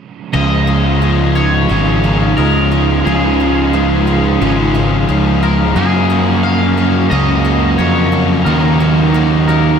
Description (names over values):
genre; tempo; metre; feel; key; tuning
rock; 89 BPM; 4/4; straight; Db major; A4 = 440 Hz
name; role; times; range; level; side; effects
twangy electric guitar; melody; 0.3-9.8 s; Ab4 to F5; -20 LUFS; left 2 dB; lush chorus, diffuse ambient delay
picked twelve-string acoustic guitar; arpeggios; 0.3-9.8 s; F3 to Ab4; -23 LUFS; right 6 dB; ensemble chorus, diffuse ambient delay
crunchy overdriven guitar; riff; 0.3-9.8 s; Gb2 to Gb4; -17 LUFS; left 7 dB; wide subtle chorus
crunchy overdriven guitar; riff; 0.3-9.8 s; Gb2 to Eb4; -15 LUFS; right 5 dB; reverse reverb
fuzz picked electric bass; bass; 0.3-9.8 s; Ab1 to Gb2; -15 LUFS; left 1 dB; overdrive
room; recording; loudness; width
wet huge ambient reverb, RT60 8.0 s; dreamy mix soaked in reverb; -10 LUFS; side -7 dB against mid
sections
0.3-9.8 A section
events
none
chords
0.3 Dbadd9; 5.8 Gbadd9; 8.5 Ebm